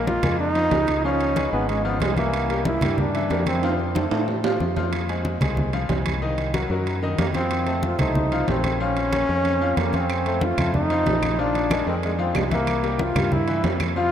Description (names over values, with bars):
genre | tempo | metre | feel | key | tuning
latin, salsa | 186 BPM | 4/4 | straight | Bb minor | A4 = 441 Hz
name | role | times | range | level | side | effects
bright trombone | melody | 0.0-3.8, 7.2-14.1 s | Ab3 to F4 | -24 LUFS | equal | none
bright upright piano | accompaniment | 0.0-14.1 s | Eb3 to F5 | -28 LUFS | left 3 dB | none
fingered electric bass | bass | 0.0-14.1 s | Ab1 to A2 | -27 LUFS | equal | none
congas | percussion | 0.1-14.1 s | none | -28 LUFS | left 1 dB | none
timbales | percussion | 0.1-14.0 s | none | -29 LUFS | right 6 dB | none
claves | percussion | 10.1-14.0 s | none | -39 LUFS | left 4 dB | none
room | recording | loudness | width
wet cathedral reverb, RT60 6.1 s | in a vast, echoing space | -20 LUFS | side -9 dB against mid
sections
0.0-14.1 A section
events
drum fill 3.6-4.9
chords
0.0 Bbm7; 1.0 Db7; 2.3 C7; 3.6 F; 4.9 Fm; 6.2 Cm7b5; 7.5 F7; 8.8 Bbm; 10.1 F7; 11.4 Bb7; 12.7 C7